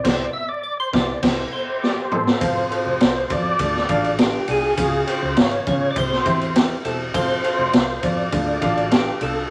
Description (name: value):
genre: uptempo 1960s-style soul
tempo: 101 BPM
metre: 4/4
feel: straight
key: F major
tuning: A4 = 439 Hz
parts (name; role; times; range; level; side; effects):
- percussive tonewheel organ; melody; 0.0-9.5 s; G4 to E5; -25 LUFS; equal; chorus vibrato, slow rotary speaker
- clear grand piano; accompaniment; 0.0-9.4 s; C3 to G5; -28 LUFS; equal; none
- vintage muted fingered electric bass; bass; 0.0-9.4 s; E1 to Db3; -31 LUFS; equal; none
- raw garage drum kit; drums; 0.0-9.3 s; crash cymbal, hi-hat, kick drum, ride cymbal, snare drum, toms; -23 LUFS; equal; none
room: moderate large studio reverb, RT60 0.9 s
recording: vinyl crackle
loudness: -20 LUFS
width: mono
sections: 0.0-2.4 A section; 2.4-9.5 B section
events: tonewheel organ solo 0.0-2.4; band accent 0.0-2.4; drum fill 1.8-2.4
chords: 0.0 C; 2.4 F; 3.6 Dm; 4.8 Db; 6.0 C; 7.1 F; 8.3 Dm